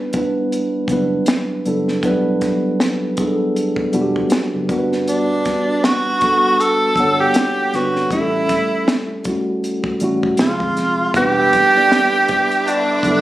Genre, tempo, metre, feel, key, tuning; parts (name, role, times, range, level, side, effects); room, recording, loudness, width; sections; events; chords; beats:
R&B, neo-soul; 79 BPM; 4/4; swing 57% on 16ths; E dorian; A4 = 440 Hz
mellow tine electric piano; accompaniment; 0.0-13.2 s; F3 to F#5; -18 LUFS; equal; slow stereo tremolo
compact cocktail drum kit; drums; 0.1-13.2 s; hi-hat, kick drum, snare drum; -21 LUFS; equal
vintage muted fingered electric bass; bass; 0.9-13.2 s; E1 to A1; -30 LUFS; right 1 dB
breathy tenor saxophone; melody; 5.1-13.2 s; D4 to A4; -16 LUFS; right 1 dB; slapback echo
warm studio string section; sustained chords; 11.2-13.2 s; B4 to D6; -29 LUFS; right 1 dB
clear horn section; stabs; 11.4-13.2 s; D3 to E4; -24 LUFS; left 2 dB
moderate studio reverb, RT60 0.8 s; recorded on a phone in the room, studio reverb, compression; -15 LUFS; side -15 dB against mid
0.0-11.1 A section; 11.1-13.2 B section
0.0 Em7; 4.7 Gmaj7; 8.1 A7; 10.4 Fm7; 11.1 Em7
0.51 1.27 | 2.03 2.79 3.55 4.31 | 5.07 5.83 6.59 7.35 | 8.11 8.87 9.62 10.38 | 11.14 11.90 12.66